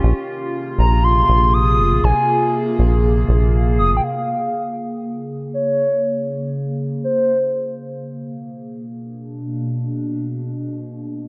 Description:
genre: IDM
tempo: 120 BPM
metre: 4/4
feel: straight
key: unclear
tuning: A4 = 440 Hz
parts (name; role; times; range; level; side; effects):
- warbly tape-like pad; sustained chords; 0.0-11.3 s; Cb3 to Ab4; -26 LUFS; equal; chorus, built-in reverb, phaser
- deep acid bass; bass; 0.0-4.0 s; F1 to Bb1; -18 LUFS; equal; none
- warbly nostalgic lead; melody; 0.8-7.7 s; C5 to Eb6; -22 LUFS; equal; chorus, delay
room: light reverb, digital ambience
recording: none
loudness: -19 LUFS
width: mono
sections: 0.0-4.0 A section; 4.0-11.3 B section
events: filter sweep on ambient pad 4.0-11.3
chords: 0.0 Ab69; 4.0 Bbm7; 8.0 Bb7b9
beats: | 0.04 0.54 1.04 1.54 | 2.04 2.54 3.04 3.54 | 4.04 4.54 5.04 5.54 | 6.04 6.54 7.04 7.54 | 8.04 8.54 9.04 9.54 | 10.04 10.54 11.04

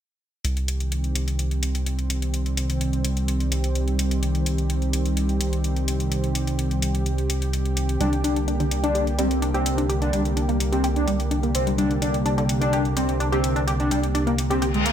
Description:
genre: melodic techno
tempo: 127 BPM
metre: 4/4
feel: straight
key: C minor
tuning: A4 = 441 Hz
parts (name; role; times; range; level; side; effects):
- lush unison pad; sustained chords; 0.4-14.9 s; D3 to G4; -28 LUFS; equal; chorus
- fat analog bass; bass; 0.4-14.9 s; C2; -24 LUFS; equal; none
- electronic hi-hat; drums; 0.4-14.9 s; none; -31 LUFS; left 2 dB; overdrive, studio reverb
- fat analog lead; melody; 8.0-14.9 s; Ab3 to D4; -26 LUFS; left 1 dB; wide subtle chorus, ping-pong delay
- tight sequenced synth; arpeggios; 8.0-14.9 s; D3 to G4; -27 LUFS; equal; chorus, digital delay
- reverse cymbal; sound effects; 14.7-14.9 s; none; -24 LUFS; left 4 dB; none
room: light reverb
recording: none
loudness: -21 LUFS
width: side -9 dB against mid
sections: 0.4-14.9 A section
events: reverse cymbal 14.7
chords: 0.4 Cm; 8.0 Gm/C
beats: | 0.45 0.92 1.39 1.86 | 2.34 2.81 3.28 3.75 | 4.23 4.70 5.17 5.64 | 6.12 6.59 7.06 7.53 | 8.01 8.48 8.95 9.42 | 9.89 10.37 10.84 11.31 | 11.79 12.26 12.73 13.20 | 13.68 14.15 14.62

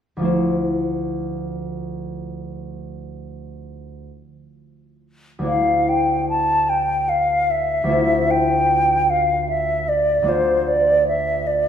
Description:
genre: classical, impressionist duo for flute and harp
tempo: 40-52 BPM (dotted quarters)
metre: 12/8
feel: rubato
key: D minor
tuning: A4 = 440 Hz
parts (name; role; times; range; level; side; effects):
- concert harp; accompaniment; 0.2-11.7 s; D2 to D5; -23 LUFS; equal; none
- mellow silver concert flute; melody; 5.5-11.7 s; C5 to A5; -17 LUFS; equal; none
room: wet recital hall reverb, RT60 1.5 s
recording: recorded in a church or concert hall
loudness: -17 LUFS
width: side -8 dB against mid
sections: 0.3-5.5 A section; 5.5-11.7 B section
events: none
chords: 0.3 Dm9; 5.5 Dmadd9; 7.9 Fmaj9/D; 10.3 Dm9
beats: | 0.28 1.59 2.81 4.04 | 5.46 6.69 7.91 9.10 | 10.30 11.47

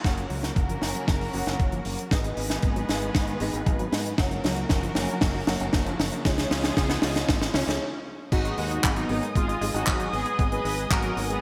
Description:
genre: italo disco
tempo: 116 BPM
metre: 4/4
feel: straight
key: G# dorian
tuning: A4 = 438 Hz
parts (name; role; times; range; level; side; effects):
- muted studio string section; sustained chords; 0.0-11.4 s; C#3 to D#6; -35 LUFS; equal; none
- analog pluck; arpeggios; 0.0-11.4 s; E#3 to E#4; -38 LUFS; equal; none
- warm concert grand piano; stabs; 0.0-11.4 s; G#2 to G#5; -38 LUFS; equal; ensemble chorus, low-pass filter, delay
- fingered electric bass; bass; 0.0-11.4 s; F#1 to G#2; -34 LUFS; equal; none
- electronic kick drum; drums; 0.0-11.0 s; none; -28 LUFS; equal; none
- tight funk drum kit; drums; 0.0-11.4 s; crash cymbal, handclaps, hi-hat, snare drum; -31 LUFS; equal; gated reverb
- analog synth brass; melody; 8.3-11.4 s; G#3 to B4; -33 LUFS; equal; chorus, digital delay
room: moderate plate reverb, RT60 2.8 s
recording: bright 1980s-style digital production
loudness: -26 LUFS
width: mono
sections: 0.0-8.3 A section; 8.3-11.4 B section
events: band accent 0.0; drum fill 0.0-7.8; stop 7.8-8.3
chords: 0.0 F#; 2.1 G#m; 4.2 F#; 6.3 C#; 8.3 G#m7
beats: | 0.04 0.56 1.08 1.60 | 2.11 2.63 3.15 3.67 | 4.18 4.70 5.22 5.73 | 6.25 6.77 7.29 7.80 | 8.32 8.84 9.35 9.87 | 10.39 10.91

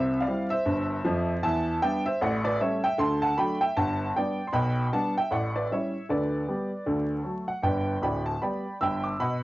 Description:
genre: jazz, stride piano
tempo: 155 BPM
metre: 4/4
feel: swing 60% on 8ths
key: G major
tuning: A4 = 440 Hz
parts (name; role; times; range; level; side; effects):
- clear upright piano; solo; 0.0-9.4 s; D1 to E6; -25 LUFS; equal; cassette tape
room: moderate booth ambience, RT60 0.3 s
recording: home recording on cassette, vinyl crackle, nothing above 7.6 kHz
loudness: -25 LUFS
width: side -18 dB against mid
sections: 0.0-7.6 A section; 7.6-9.4 B section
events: none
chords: 0.0 C; 1.4 Em7; 2.2 A7; 3.0 D; 3.8 G; 4.5 G/B; 5.3 A7; 6.1 G/D; 6.9 D; 7.6 G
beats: 0.28 0.67 1.06 | 1.45 1.83 2.22 2.61 | 3.00 3.38 3.77 4.16 | 4.55 4.93 5.32 5.71 | 6.09 6.48 6.87 7.25 | 7.64 8.03 8.41 8.80 | 9.19

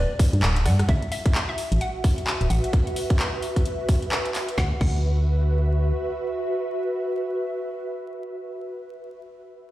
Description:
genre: UK garage, two-step garage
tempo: 130 BPM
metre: 4/4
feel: swing 60% on 16ths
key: D major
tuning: A4 = 440 Hz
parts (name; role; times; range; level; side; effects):
- hollow square pluck; melody; 0.0-9.1 s; B4 to F#5; -33 LUFS; equal; chorus, tape echo
- organ-like FM bass; bass; 0.0-5.9 s; D1 to G2; -20 LUFS; equal; none
- electronic kick drum; drums; 0.2-5.0 s; none; -20 LUFS; equal; studio reverb
- garage drum kit; drums; 0.2-5.0 s; crash cymbal, handclaps, hi-hat, rim click, snare drum; -29 LUFS; equal; studio reverb
- ethereal airy pad; texture; 1.5-9.0 s; F#4 to E5; -29 LUFS; equal; ensemble chorus, built-in reverb, sidechain pumping
room: moderate lush hall reverb, RT60 2.1 s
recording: played on a big sound system in a bare room, stone room reverb, vinyl crackle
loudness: -21 LUFS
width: side -15 dB against mid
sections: 0.9-4.6 A section; 4.6-8.3 B section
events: kick drops out 0.4-0.9; band accent 0.4; drum fill 0.7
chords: 0.0 Gmaj7; 0.9 Dadd9 (rootless); 4.6 Dadd9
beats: 0.42 | 0.89 1.35 1.81 2.27 | 2.73 3.19 3.65 4.12 | 4.58 5.04 5.50 5.96 | 6.42 6.89 7.35 7.81

